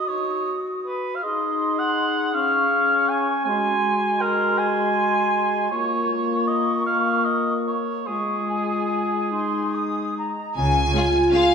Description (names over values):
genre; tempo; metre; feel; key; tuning
classical, orchestral ballroom waltz; 134-173 BPM; 3/4; rubato; Db major; A4 = 440 Hz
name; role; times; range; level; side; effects
flute section; second line; 0.0-11.5 s; F5 to D#6; -28 LUFS; left 1 dB; none
mellow clarinet; second line; 0.0-11.5 s; Eb4 to Ab4; -29 LUFS; left 1 dB; none
mellow cor anglais; second line; 0.0-11.5 s; Ab4 to Ab5; -23 LUFS; right 2 dB; none
dark French horn section; sustained chords; 0.1-11.5 s; Ab3 to F4; -26 LUFS; left 3 dB; none
warm studio violin section; melody; 10.6-11.5 s; F5 to Ab5; -24 LUFS; left 4 dB; none
rich studio double bass section; bass; 10.6-10.9 s; Db2; -26 LUFS; right 1 dB; none
warm studio cello section; bass; 10.6-10.9 s; Db3; -26 LUFS; right 2 dB; none
dark studio viola section; accompaniment; 10.9-11.4 s; Ab3 to Db4; -28 LUFS; right 1 dB; none
warm studio violin section; second line; 11.0-11.4 s; F4 to Ab4; -30 LUFS; left 2 dB; none
room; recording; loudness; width
wet recital hall reverb, RT60 1.8 s; recorded in a church or concert hall; -20 LUFS; side -6 dB against mid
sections
0.0-10.6 A section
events
none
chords
0.0 B/D#; 2.3 Db; 3.5 Ab7; 5.7 Bbm; 8.1 Db/Ab; 10.6 Db